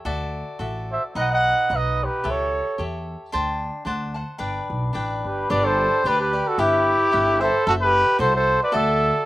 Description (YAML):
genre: mexican folk, mariachi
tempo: 111 BPM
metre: 2/4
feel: straight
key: G major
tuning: A4 = 440 Hz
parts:
  - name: cavaquinho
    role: accompaniment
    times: 0.0-9.3 s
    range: D4 to A5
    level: -27 LUFS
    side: left 2 dB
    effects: slapback echo
  - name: upright bass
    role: bass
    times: 0.1-9.1 s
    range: F#1 to E2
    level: -28 LUFS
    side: equal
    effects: none
  - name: mellow trumpet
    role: melody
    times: 0.9-2.8, 5.2-9.3 s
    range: G4 to F#5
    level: -20 LUFS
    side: equal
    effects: none
  - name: warm trumpet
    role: second line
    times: 0.9-2.8, 5.3-9.3 s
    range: E4 to D#5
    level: -26 LUFS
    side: right 3 dB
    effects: slapback echo
room: little or no reverb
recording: recorded outdoors, with no room sound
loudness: -19 LUFS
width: side -16 dB against mid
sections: 0.0-5.5 A section; 5.5-9.3 A section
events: none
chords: 0.1 Dadd9; 1.2 B; 2.2 A7/C#; 3.3 D7sus4; 3.9 D7; 4.4 G; 6.6 Em/G; 7.7 F#m7b5; 8.7 Dadd9